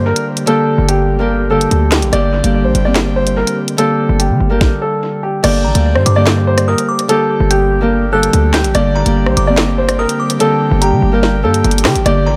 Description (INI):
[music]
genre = hip hop, drill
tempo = 145 BPM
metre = 4/4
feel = half-time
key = G minor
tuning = A4 = 438 Hz
[part]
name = warm upright piano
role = melody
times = 0.0-12.4 s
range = G4 to D5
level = -19 LUFS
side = equal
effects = dub echo
[part]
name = Celtic harp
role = accompaniment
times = 0.0-12.4 s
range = D3 to G4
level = -20 LUFS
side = equal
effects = none
[part]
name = airy breathy pad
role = sustained chords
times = 0.0-12.4 s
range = D3 to G4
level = -25 LUFS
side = equal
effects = chorus
[part]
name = hard-hitting 808-style bass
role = bass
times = 0.0-12.4 s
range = G1 to D3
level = -17 LUFS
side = equal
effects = none
[part]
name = drill drum kit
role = drums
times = 0.2-12.2 s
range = crash cymbal, handclaps, hi-hat, kick drum, rim click, snare drum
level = -20 LUFS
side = equal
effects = dub echo
[part]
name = delicate synth tine bell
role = second line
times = 5.6-12.4 s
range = Bb5 to G6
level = -26 LUFS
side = equal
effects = chorus, dub echo
[sound]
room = light reverb, digital ambience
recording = echo-heavy mix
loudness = -13 LUFS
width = mono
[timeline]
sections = 0.0-5.4 A section; 5.4-12.4 B section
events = stop 4.6-5.4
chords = 0.0 Gm